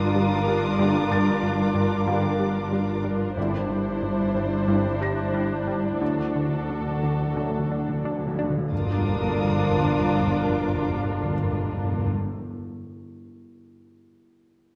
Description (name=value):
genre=cinematic, suspense film score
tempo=92 BPM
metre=4/4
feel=straight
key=G dorian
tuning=A4 = 444 Hz
part: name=muted studio violin section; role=melody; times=0.0-12.1 s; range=A4 to C5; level=-35 LUFS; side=equal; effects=none
part: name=muted symphonic violin section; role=second line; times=0.0-12.1 s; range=E4 to F#4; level=-36 LUFS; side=equal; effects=none
part: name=muted symphonic viola section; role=accompaniment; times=0.0-12.1 s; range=D4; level=-34 LUFS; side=equal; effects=none
part: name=deep dark ambient pad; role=sustained chords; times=0.0-12.1 s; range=D4 to D5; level=-35 LUFS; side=equal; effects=chorus, built-in reverb
part: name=plucky analog bass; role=riff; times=0.0-8.6 s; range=G2 to D4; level=-31 LUFS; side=equal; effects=none
part: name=muted symphonic cello section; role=bass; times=0.0-12.1 s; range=D2 to G2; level=-32 LUFS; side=equal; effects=none
part: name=muted symphonic double bass section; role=bass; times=0.0-12.1 s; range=G1 to D2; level=-34 LUFS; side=equal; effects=none
part: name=felt-muted upright piano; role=texture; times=0.0-8.7 s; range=Bb5 to Bb6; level=-42 LUFS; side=equal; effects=none
part: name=muted symphonic violin section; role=texture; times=0.0-3.0, 8.7-11.0 s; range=D6 to Eb6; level=-40 LUFS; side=equal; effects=none
part: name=bright trombone section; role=sustained chords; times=0.8-12.1 s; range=D3 to G3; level=-37 LUFS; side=equal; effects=none
part: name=mellow French horn section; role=sustained chords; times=0.8-12.1 s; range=A3 to F4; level=-36 LUFS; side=equal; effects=none
part: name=timpani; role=percussion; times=3.4-12.3 s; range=G2 to D3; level=-31 LUFS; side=equal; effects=none
room=wet scoring stage reverb, RT60 1.6 s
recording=none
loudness=-24 LUFS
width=mono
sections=0.0-8.7 A section; 8.7-11.3 B section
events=timpani fill 6.0-8.7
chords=0.0 Gm7; 3.4 Cadd9/G; 6.0 D; 8.7 Gm7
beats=0.15 | 0.79 1.43 2.07 2.71 | 3.37 4.02 4.67 5.33 | 6.01 6.69 7.38 8.05 | 8.72 9.37 10.03 10.68